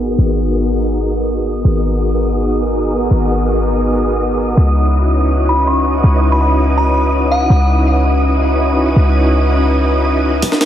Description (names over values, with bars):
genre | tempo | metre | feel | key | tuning
drum and bass, jungle | 164 BPM | 4/4 | straight | unclear | A4 = 436 Hz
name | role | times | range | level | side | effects
soft string machine | sustained chords | 0.0-10.7 s | B3 to B4 | -16 LUFS | equal | ensemble chorus
warm 808-style bass | bass | 0.0-10.4 s | G#1 to C#2 | -14 LUFS | equal | none
wind-like tuned noise texture | texture | 1.3-10.7 s | D#6 to F#6 | -25 LUFS | right 2 dB | built-in reverb
glassy synth bell | melody | 5.5-7.6 s | F#5 to C#6 | -19 LUFS | left 1 dB | chorus, dub echo
jungle sampler-style drum kit | drums | 10.4-10.7 s | hi-hat, kick drum, snare drum | -13 LUFS | equal | high-pass filter on kick, high-pass filter on hats, high-pass filter on snare, high-pass filter on room
room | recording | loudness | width
moderate plate reverb, RT60 1.6 s | heavily compressed radio sound, low-pass filter | -12 LUFS | side -10 dB against mid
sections
0.0-10.4 A section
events
filter sweep on string machine 0.0-10.4; filter sweep 0.0-10.4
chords
0.0 G#m9; 4.6 C#m11